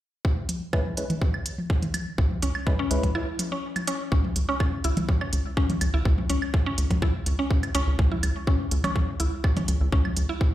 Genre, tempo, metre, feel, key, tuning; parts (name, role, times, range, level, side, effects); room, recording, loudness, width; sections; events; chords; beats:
minimal techno; 124 BPM; 4/4; straight; C# minor; A4 = 440 Hz
electronic kick drum; drums; 0.2-10.5 s; -24 LUFS; equal
electronic hi-hat; drums; 0.5-10.3 s; -33 LUFS; right 2 dB
electronic toms and woodblock; percussion; 0.5-10.1 s; -32 LUFS; equal; dub echo
percussive organ stab; stabs; 0.7-3.0 s; G#3 to B4; -32 LUFS; equal; chorus, dub echo
rubbery square bass; bass; 2.2-10.3 s; C#2; -25 LUFS; equal; sidechain pumping
mallet-like synth pluck; riff; 2.4-10.3 s; C#4 to E4; -30 LUFS; left 1 dB; chorus, phaser, sidechain pumping, dub echo
light reverb, digital ambience; played on a big sound system in a bare room, large studio reverb; -23 LUFS; side -14 dB against mid
0.2-4.1 A section; 4.1-10.5 B section
break 3.2-4.1
0.2 C#m7; 4.1 N.C.
| 0.25 0.73 1.22 1.70 | 2.18 2.67 3.15 3.63 | 4.12 4.60 5.09 5.57 | 6.05 6.54 7.02 7.51 | 7.99 8.47 8.96 9.44 | 9.93 10.41